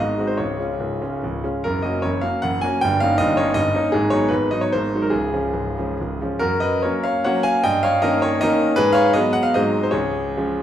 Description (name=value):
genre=classical, romantic triple-time dance for piano with dotted rhythms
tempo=132-169 BPM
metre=3/4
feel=rubato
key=F# major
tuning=A4 = 440 Hz
part: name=clear concert grand piano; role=solo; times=0.0-10.6 s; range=C#1 to G#5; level=-18 LUFS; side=equal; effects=none
room=wet recital hall reverb, RT60 1.5 s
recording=minimal, uncompressed stereo recording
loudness=-18 LUFS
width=side -10 dB against mid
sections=0.0-6.4 A section; 6.4-10.6 B section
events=none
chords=0.4 C#; 1.6 F#; 2.8 D#7/G; 3.9 G#m7; 4.7 G#7; 5.1 C#; 6.4 F#; 7.6 D#7/G; 8.8 G#m7; 9.6 G#7; 10.0 C#